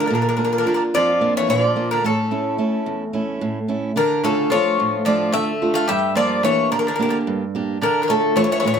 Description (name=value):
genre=greek folk, Greek bouzouki band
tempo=218 BPM (eighths)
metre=7/8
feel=straight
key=unclear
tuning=A4 = 440 Hz
part: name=Greek bouzouki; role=melody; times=0.0-8.8 s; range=A4 to F5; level=-20 LUFS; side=left 2 dB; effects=slapback echo
part: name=Greek bouzouki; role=second line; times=0.0-8.8 s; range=C#3 to A3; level=-26 LUFS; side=equal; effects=none
part: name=picked steel-string acoustic guitar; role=accompaniment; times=0.0-8.8 s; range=E2 to G4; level=-21 LUFS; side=right 2 dB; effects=none
room=light reverb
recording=close, detailed microphones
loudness=-17 LUFS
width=side -7 dB against mid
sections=0.0-4.0 A section; 4.0-8.8 B section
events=none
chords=0.1 Bb; 2.0 A; 4.0 Dm; 5.9 Gm; 7.8 Dm